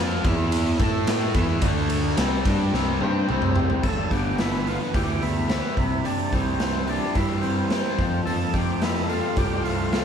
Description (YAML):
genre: classic rock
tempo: 108 BPM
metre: 4/4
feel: straight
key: G mixolydian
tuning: A4 = 440 Hz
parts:
  - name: cranked stack guitar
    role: riff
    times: 0.0-10.0 s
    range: F2 to A4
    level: -29 LUFS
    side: right 4 dB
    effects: overdrive
  - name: overdriven electric guitar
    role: riff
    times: 0.0-10.0 s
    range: C3 to B4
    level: -27 LUFS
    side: left 5 dB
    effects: none
  - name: fuzz fingered electric bass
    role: bass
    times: 0.0-10.0 s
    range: G1 to A2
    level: -28 LUFS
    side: equal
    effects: overdrive
  - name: raw garage drum kit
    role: drums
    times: 0.2-10.0 s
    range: crash cymbal, hi-hat, kick drum, ride cymbal, snare drum, toms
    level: -25 LUFS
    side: right 1 dB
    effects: none
  - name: overdriven tonewheel organ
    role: melody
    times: 3.0-10.0 s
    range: C4 to A4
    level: -30 LUFS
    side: equal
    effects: slow rotary speaker
room: moderate large studio reverb, RT60 0.9 s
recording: band playing live in one room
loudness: -21 LUFS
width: side -8 dB against mid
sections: 0.0-3.8 A section; 3.8-10.0 B section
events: drum fill 2.7-3.8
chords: 0.2 E5; 0.8 A5; 1.4 E5; 1.6 D5; 2.2 C5; 3.8 G6; 5.8 C; 8.0 F